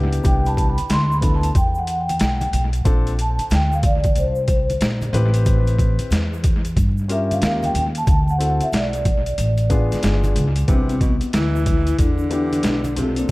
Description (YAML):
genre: hip hop, jazz-hop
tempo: 92 BPM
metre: 4/4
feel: swing 63% on 16ths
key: unclear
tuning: A4 = 440 Hz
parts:
  - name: dark baby grand piano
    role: accompaniment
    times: 0.0-13.3 s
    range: B3 to B4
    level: -27 LUFS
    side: left 3 dB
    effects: analog delay
  - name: upright bass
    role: bass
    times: 0.0-13.3 s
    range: G1 to G2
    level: -20 LUFS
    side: equal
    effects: none
  - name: boom bap sampler-style drum kit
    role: drums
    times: 0.1-13.3 s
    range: hi-hat, kick drum, snare drum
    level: -21 LUFS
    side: equal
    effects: overdrive
  - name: egg shaker and congas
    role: percussion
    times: 0.1-13.3 s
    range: none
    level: -33 LUFS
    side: right 1 dB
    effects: none
  - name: vibraphone with soft mallets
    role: melody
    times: 0.3-13.3 s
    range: Bb3 to C6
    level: -23 LUFS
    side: equal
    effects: analog delay
  - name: breathy tenor saxophone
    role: second line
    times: 10.7-13.3 s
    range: Bb2 to E3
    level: -29 LUFS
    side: right 4 dB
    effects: none
room: small room ambience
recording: echo-heavy mix, vinyl crackle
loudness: -16 LUFS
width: side -20 dB against mid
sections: 0.0-10.7 A section; 10.7-13.3 B section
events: vibraphone solo 0.0-10.7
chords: 0.2 Cmaj9; 2.9 Bbadd9; 5.1 Am7; 7.4 D#9; 8.1 D7; 10.0 G7b9; 10.7 Cmaj9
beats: | 0.25 0.90 1.55 2.20 | 2.86 3.51 4.16 4.81 | 5.46 6.12 6.77 7.42 | 8.07 8.73 9.38 10.03 | 10.68 11.33 11.99 12.64 | 13.29